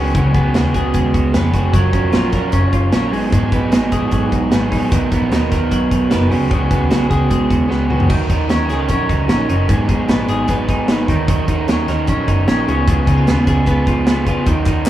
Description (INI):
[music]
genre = jangly indie pop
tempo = 151 BPM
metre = 4/4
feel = straight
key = unclear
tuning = A4 = 440 Hz
[part]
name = raw garage guitar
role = accompaniment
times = 0.0-14.9 s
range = G#2 to A#4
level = -19 LUFS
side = right 3 dB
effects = overdrive, spring reverb
[part]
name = twelve-string electric guitar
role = arpeggios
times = 0.0-14.9 s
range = G#2 to A#4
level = -19 LUFS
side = left 2 dB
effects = tape echo
[part]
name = vintage muted picked electric bass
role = bass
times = 0.0-14.9 s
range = E#1 to E#2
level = -19 LUFS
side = equal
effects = none
[part]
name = modern studio drum kit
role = drums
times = 0.1-14.9 s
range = crash cymbal, hi-hat, kick drum, snare drum, toms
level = -19 LUFS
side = equal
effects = none
[part]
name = group handclap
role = percussion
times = 14.7-14.9 s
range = none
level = -29 LUFS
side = left 4 dB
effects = none
[sound]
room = small room ambience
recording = rough home demo mix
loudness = -13 LUFS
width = side -13 dB against mid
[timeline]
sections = 0.0-8.1 A section; 8.1-14.9 B section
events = drum fill 7.7-8.1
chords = 0.0 C#7sus4; 1.7 F#maj7; 3.1 G#m7; 4.9 Bmaj7; 6.3 C#7sus4; 8.1 D#m7; 9.7 G#m7; 11.1 D#m7; 12.7 C#7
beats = | 0.15 0.55 0.94 1.34 | 1.74 2.14 2.53 2.93 | 3.33 3.73 4.12 4.52 | 4.92 5.32 5.72 6.11 | 6.51 6.91 7.31 7.70 | 8.10 8.50 8.90 9.29 | 9.69 10.09 10.49 10.88 | 11.28 11.68 12.08 12.48 | 12.88 13.27 13.67 14.07 | 14.47 14.87